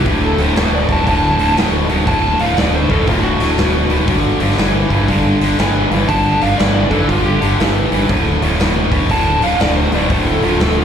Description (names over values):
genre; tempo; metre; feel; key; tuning
blues rock power trio and southern rock; 120 BPM; 4/4; swing 64% on 8ths; D mixolydian; A4 = 441 Hz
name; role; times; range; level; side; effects
overdriven slide guitar; melody; 0.0-10.8 s; F4 to A5; -19 LUFS; right 1 dB; plate reverb, slapback echo
tight distorted guitar; riff; 0.0-10.8 s; D2 to E3; -17 LUFS; left 1 dB; distortion, slapback echo
growling fingered electric bass; bass; 0.0-10.8 s; D1 to G1; -18 LUFS; equal; overdrive
huge arena drum kit; drums; 0.1-10.8 s; hi-hat, kick drum, snare drum; -18 LUFS; equal; none
room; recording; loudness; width
light reverb; live gig heard through the venue's PA, club reverb; -12 LUFS; side -8 dB against mid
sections
0.0-10.8 A section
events
electric slide guitar solo 0.0-10.8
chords
0.1 D; 4.1 G5; 8.1 D5